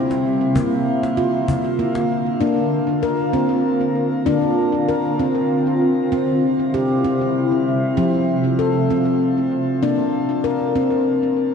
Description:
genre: world meditative, meditative tuned percussion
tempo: 97 BPM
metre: 3/4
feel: swing 54% on 16ths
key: Bb lydian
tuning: A4 = 444 Hz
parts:
  - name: shimmering ambient pad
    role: sustained chords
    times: 0.0-9.8 s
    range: C3 to F4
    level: -22 LUFS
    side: left 1 dB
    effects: chorus, built-in reverb, phaser, shimmer reverb
  - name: handpan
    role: arpeggios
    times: 0.0-11.5 s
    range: F3 to Bb4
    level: -18 LUFS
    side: equal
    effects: tape echo, shimmer reverb
  - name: cajon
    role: percussion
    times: 0.1-2.1 s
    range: none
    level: -27 LUFS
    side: left 2 dB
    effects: none
room: wet lush hall reverb, RT60 2.8 s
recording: dreamy mix soaked in reverb, cassette tape, nothing above 10.5 kHz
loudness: -17 LUFS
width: side -6 dB against mid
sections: 0.0-2.4 A section; 2.4-11.5 B section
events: none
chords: 0.0 C; 0.6 Bb; 6.1 C; 8.0 F; 9.8 Bb

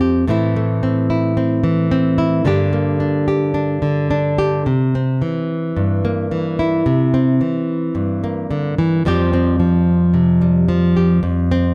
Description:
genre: folk, solo fingerstyle acoustic guitar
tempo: 110 BPM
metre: 4/4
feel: straight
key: C mixolydian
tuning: A4 = 440 Hz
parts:
  - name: nylon-string guitar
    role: solo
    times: 0.0-11.7 s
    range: F2 to G4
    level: -17 LUFS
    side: equal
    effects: none
room: moderate large studio reverb, RT60 1.2 s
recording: none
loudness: -17 LUFS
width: mono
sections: 0.0-4.7 A section; 4.7-11.7 B section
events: none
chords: 0.3 Am; 2.5 Gm; 4.7 C7; 9.0 Fsus2

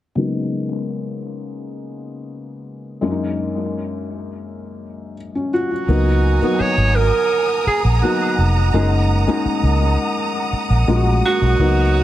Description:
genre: R&B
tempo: 84 BPM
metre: 4/4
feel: straight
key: F# major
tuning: A4 = 440 Hz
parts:
  - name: felt-muted upright piano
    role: accompaniment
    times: 0.2-12.0 s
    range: F#2 to F#4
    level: -22 LUFS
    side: left 3 dB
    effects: low-pass filter, tape echo
  - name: warm alto saxophone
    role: melody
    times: 5.5-12.0 s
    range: F#4 to C#5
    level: -20 LUFS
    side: right 4 dB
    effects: tape echo
  - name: warm studio string section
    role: sustained chords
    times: 5.9-12.0 s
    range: C#5 to D#6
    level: -24 LUFS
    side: right 2 dB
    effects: none
  - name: vintage muted fingered electric bass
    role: bass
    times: 5.9-12.0 s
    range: E#1 to C#2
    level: -16 LUFS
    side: equal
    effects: none
room: light reverb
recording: echo-heavy mix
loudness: -16 LUFS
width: side -13 dB against mid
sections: 0.2-5.9 A section; 5.9-12.0 B section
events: filter sweep on felt piano 0.2-5.9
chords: 0.2 C#13sus4; 3.0 F#6; 5.9 C#13sus4; 8.7 F#6

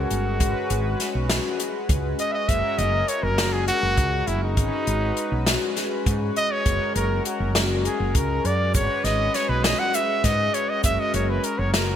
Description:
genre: progressive instrumental, band music in an uneven meter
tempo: 201 BPM (eighths)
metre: 7/8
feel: straight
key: G# minor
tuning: A4 = 440 Hz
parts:
  - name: warm trumpet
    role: melody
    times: 0.0-12.0 s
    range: D#4 to F#5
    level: -25 LUFS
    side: equal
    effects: digital delay
  - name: chorused pulse-width pad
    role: accompaniment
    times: 0.0-12.0 s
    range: G#3 to B4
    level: -30 LUFS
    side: left 2 dB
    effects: none
  - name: vibraphone with soft mallets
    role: arpeggios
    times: 0.0-12.0 s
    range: F#4 to G#4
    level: -31 LUFS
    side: left 3 dB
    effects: none
  - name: woody fretless electric bass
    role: bass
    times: 0.0-12.0 s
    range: F#1 to G#2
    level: -25 LUFS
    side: equal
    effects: analog chorus
  - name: open jazz drum kit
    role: drums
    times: 0.1-11.9 s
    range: hi-hat, kick drum, snare drum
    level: -25 LUFS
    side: equal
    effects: gated reverb
  - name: egg shaker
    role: percussion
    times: 8.7-11.1 s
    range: none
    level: -33 LUFS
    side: right 8 dB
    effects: none
room: light reverb, small room ambience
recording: bright 1980s-style digital production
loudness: -20 LUFS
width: side -9 dB against mid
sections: 0.0-12.0 A section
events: trumpet solo 0.0-12.0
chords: 0.4 G#m; 2.5 F#; 4.6 G#m; 6.7 F#; 8.8 G#m; 10.8 F#

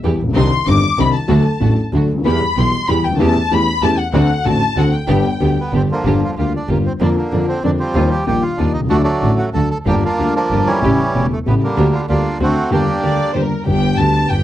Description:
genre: tango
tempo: 190 BPM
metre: 3/4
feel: rubato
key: G major, G minor from 6.1 s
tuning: A4 = 439 Hz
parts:
  - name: dark baby grand piano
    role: accompaniment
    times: 0.0-14.4 s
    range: E1 to A4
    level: -16 LUFS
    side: left 2 dB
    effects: none
  - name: rich studio string section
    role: stabs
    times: 0.0-14.4 s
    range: G3 to G4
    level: -26 LUFS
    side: right 6 dB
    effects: none
  - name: clear double bass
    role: bass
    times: 0.0-14.4 s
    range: E1 to F2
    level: -20 LUFS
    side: right 2 dB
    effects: none
  - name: warm studio violin section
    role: second line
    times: 0.3-5.7, 13.0-14.4 s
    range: Bb4 to D6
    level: -20 LUFS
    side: left 3 dB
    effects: none
  - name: bandoneon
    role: melody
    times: 5.6-13.3 s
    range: D3 to A4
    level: -19 LUFS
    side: right 2 dB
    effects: slapback echo
room: little or no reverb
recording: dry, close 1970s-style studio recording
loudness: -13 LUFS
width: side -12 dB against mid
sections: 0.0-6.1 A section; 6.1-13.7 B section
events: violin section solo 0.0-6.1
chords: 0.4 Cmadd9; 1.3 D; 2.2 Em; 3.2 A7/E; 4.1 D7; 5.1 G; 6.1 Gm7; 7.0 Bbadd9/F; 8.0 Ebadd9; 8.9 D; 9.9 Gm7; 10.8 A7; 11.8 Gm/D; 12.4 D7; 12.7 Gm; 13.7 G

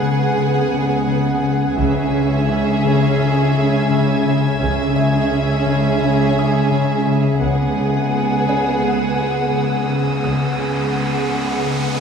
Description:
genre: cinematic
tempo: 85 BPM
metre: 4/4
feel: straight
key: C# minor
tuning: A4 = 440 Hz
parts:
  - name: dark studio violin section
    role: melody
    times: 0.0-12.0 s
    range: E5 to F#5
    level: -27 LUFS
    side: left 1 dB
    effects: none
  - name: warm chamber violin section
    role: second line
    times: 0.0-12.0 s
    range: G#4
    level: -24 LUFS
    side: equal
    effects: none
  - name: dark chamber viola section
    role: accompaniment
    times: 0.0-12.0 s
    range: B3 to C#4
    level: -23 LUFS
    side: right 5 dB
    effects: none
  - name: soft additive organ-like pad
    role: sustained chords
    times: 0.0-12.0 s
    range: G#4 to F#5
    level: -26 LUFS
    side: right 3 dB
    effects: ensemble chorus, built-in reverb
  - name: concert harp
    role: riff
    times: 0.0-12.0 s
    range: C#3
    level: -20 LUFS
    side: left 5 dB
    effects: none
  - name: warm studio cello section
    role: bass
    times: 0.0-12.0 s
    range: C#2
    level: -23 LUFS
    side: right 2 dB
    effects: none
  - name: warm chamber violin section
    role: texture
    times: 0.0-12.0 s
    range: D#6 to G#6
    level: -32 LUFS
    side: equal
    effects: none
  - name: warm chamber double bass section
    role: bass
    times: 1.8-10.9 s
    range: C#2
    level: -27 LUFS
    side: right 3 dB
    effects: none
  - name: music box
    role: texture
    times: 5.0-12.0 s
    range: C#4 to D#6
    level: -30 LUFS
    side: right 2 dB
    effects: none
  - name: riser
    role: sound effects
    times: 9.1-12.0 s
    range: none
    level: -29 LUFS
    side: right 2 dB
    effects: none
room: wet scoring stage reverb, RT60 1.5 s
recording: heard from further back in the room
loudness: -15 LUFS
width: side -6 dB against mid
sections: 0.0-12.0 A section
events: riser 9.1-12.0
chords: 0.0 G#m7/C#; 1.8 C#m; 7.4 G#m7/C#

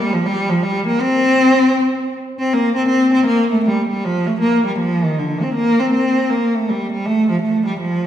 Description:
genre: celtic folk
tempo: 159 BPM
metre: 4/4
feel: swing 63% on 8ths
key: C dorian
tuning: A4 = 440 Hz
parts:
  - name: rich cello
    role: solo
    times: 0.0-8.1 s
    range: D3 to C4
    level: -14 LUFS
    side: equal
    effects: none
room: wet recital hall reverb, RT60 1.9 s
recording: recorded in a church or concert hall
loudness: -14 LUFS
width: side -10 dB against mid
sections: 0.0-2.5 A section; 2.5-8.1 B section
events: none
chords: none

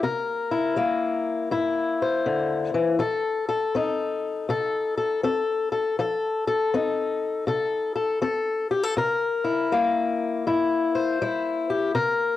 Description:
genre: blues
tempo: 81 BPM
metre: 4/4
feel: swing 64% on 8ths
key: C mixolydian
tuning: A4 = 440 Hz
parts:
  - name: fingerpicked swing-style acoustic guitar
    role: solo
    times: 0.0-12.4 s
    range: G2 to C5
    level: -22 LUFS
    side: left 3 dB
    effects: cassette tape
room: moderate spring reverb, RT60 1.4 s, small room ambience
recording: home recording on cassette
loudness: -22 LUFS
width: side -13 dB against mid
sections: 0.0-12.4 A section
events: none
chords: 0.0 C7; 3.0 F7; 9.0 C7

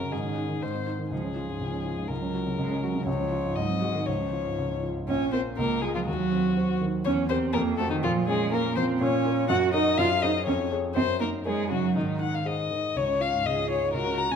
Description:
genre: quick classical-period movement for piano trio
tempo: 122 BPM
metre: 2/4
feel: straight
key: Db major, Bb minor from 5.1 s, Db major from 9.0 s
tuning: A4 = 438 Hz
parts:
  - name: muted violin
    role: melody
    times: 0.0-14.4 s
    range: Eb4 to Bb5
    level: -29 LUFS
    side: left 7 dB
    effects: none
  - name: muted cello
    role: second line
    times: 0.0-14.4 s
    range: Db3 to Ab4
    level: -28 LUFS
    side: right 5 dB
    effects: none
  - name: warm grand piano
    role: accompaniment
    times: 0.0-14.4 s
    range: Bb1 to Db5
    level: -29 LUFS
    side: equal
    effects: none
room: wet recital hall reverb, RT60 1.5 s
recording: none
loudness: -24 LUFS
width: side -7 dB against mid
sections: 0.0-5.1 A section; 5.1-13.0 B section; 13.0-14.4 A section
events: none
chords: 0.1 Absus4; 0.6 Ab; 1.1 Db; 2.1 Gb/Db; 3.1 Db; 3.6 Ab7; 4.1 Db; 5.1 Bbm; 5.6 Db; 6.1 Cdim/Eb; 7.1 Edim7; 7.5 F5; 8.0 Bbm; 9.5 Gb; 10.0 Ab7/Gb; 10.5 Db/F; 11.0 Ebm7/Gb; 12.0 Ab; 13.0 Db

